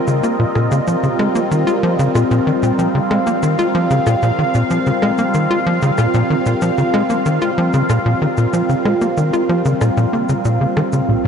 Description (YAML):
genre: ambient, sequencer-driven space music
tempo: 94 BPM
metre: 4/4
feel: straight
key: unclear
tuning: A4 = 439 Hz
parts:
  - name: evolving wavetable pad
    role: sustained chords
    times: 0.0-11.3 s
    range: G3 to F5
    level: -17 LUFS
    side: equal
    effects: phaser, built-in reverb
  - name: tight sequencer bass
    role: riff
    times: 0.1-11.3 s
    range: Bb2 to F4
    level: -16 LUFS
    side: equal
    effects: ping-pong delay
  - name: shaker and percussion blips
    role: percussion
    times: 0.1-11.1 s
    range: none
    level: -30 LUFS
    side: equal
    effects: overdrive, ping-pong delay
  - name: warm sub bass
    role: bass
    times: 11.1-11.3 s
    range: Bb1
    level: -33 LUFS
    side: equal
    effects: none
room: wet huge ambient reverb, RT60 8.0 s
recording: nothing above 10.9 kHz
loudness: -14 LUFS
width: side -7 dB against mid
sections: 0.0-11.1 A section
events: none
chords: 0.0 Bbsus2